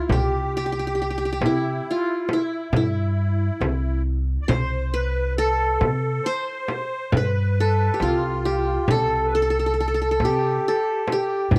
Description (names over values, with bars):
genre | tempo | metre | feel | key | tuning
Arabic maqam ensemble | 137 BPM (eighths) | 10/8 | straight | C maqam ajam | A4 = 440 Hz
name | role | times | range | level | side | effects
qanun | melody | 0.0-11.6 s | E4 to C5 | -26 LUFS | equal | none
musette accordion | second line | 0.0-11.6 s | E4 to D5 | -32 LUFS | equal | none
upright bass | bass | 0.1-11.6 s | C2 to C3 | -26 LUFS | equal | none
frame drum | percussion | 0.1-11.6 s | none | -26 LUFS | equal | none
room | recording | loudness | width
little or no reverb | dry, close 1970s-style studio recording | -23 LUFS | mono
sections
0.0-11.6 A section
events
none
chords
none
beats
| 0.11 0.55 0.98 1.43 1.86 2.30 2.74 3.18 3.62 4.06 | 4.50 4.94 5.38 5.82 6.26 6.70 7.14 7.58 8.01 8.45 | 8.89 9.33 9.77 10.21 10.65 11.09 11.53